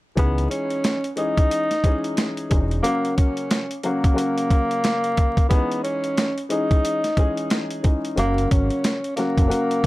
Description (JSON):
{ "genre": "hip hop, boom-bap hip-hop", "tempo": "90 BPM", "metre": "4/4", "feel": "swing 60% on 16ths", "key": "C# dorian", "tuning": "A4 = 440 Hz", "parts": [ { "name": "mellow tenor saxophone", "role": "melody", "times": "0.2-9.9 s", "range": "A#3 to D#4", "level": "-24 LUFS", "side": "equal", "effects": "high-pass filter, low-pass filter, tape echo" }, { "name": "dark upright piano", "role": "accompaniment", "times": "0.2-9.9 s", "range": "C#3 to G#4", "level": "-26 LUFS", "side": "left 2 dB", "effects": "high-pass filter, low-pass filter" }, { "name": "deep dub fingered electric bass", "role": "bass", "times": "0.2-2.8, 8.2-9.9 s", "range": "E1 to C#2", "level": "-23 LUFS", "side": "equal", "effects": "none" }, { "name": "boom bap sampler-style drum kit", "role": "drums", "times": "0.2-9.9 s", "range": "hi-hat, kick drum, snare drum", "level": "-20 LUFS", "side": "equal", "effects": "none" } ], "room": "moderate small room ambience, RT60 0.5 s", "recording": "vinyl crackle", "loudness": "-19 LUFS", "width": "side -18 dB against mid", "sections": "0.2-9.9 A section", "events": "none", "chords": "0.2 C#madd9; 2.8 F#; 5.5 C#madd9; 8.2 F#" }